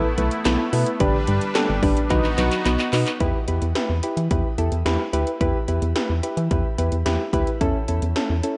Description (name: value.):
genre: synth-pop.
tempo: 109 BPM.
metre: 4/4.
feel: straight.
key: E minor.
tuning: A4 = 440 Hz.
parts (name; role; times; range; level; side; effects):
soft electric-piano-like synth keys; accompaniment; 0.0-8.6 s; C#4 to B4; -27 LUFS; equal; chorus, shimmer reverb.
brassy analog pad; sustained chords; 0.0-3.2 s; G3 to B4; -31 LUFS; equal; chorus, shimmer reverb.
soft round pluck; arpeggios; 0.0-3.1 s; D3 to E4; -30 LUFS; equal; chorus, slapback echo, shimmer reverb.
solid FM bass; bass; 0.2-8.4 s; G1 to E3; -25 LUFS; equal; none.
80s electronic pad drums; drums; 0.2-8.6 s; handclaps, hi-hat, kick drum, snare drum; -28 LUFS; equal; gated reverb.
room: light reverb, digital ambience.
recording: nothing above 10.6 kHz.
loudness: -22 LUFS.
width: mono.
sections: 0.0-3.2 A section; 3.2-8.6 B section.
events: drum fill 2.1-3.2.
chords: 0.0 B7sus4; 1.0 G; 2.1 B; 3.2 Em; 7.6 A/E.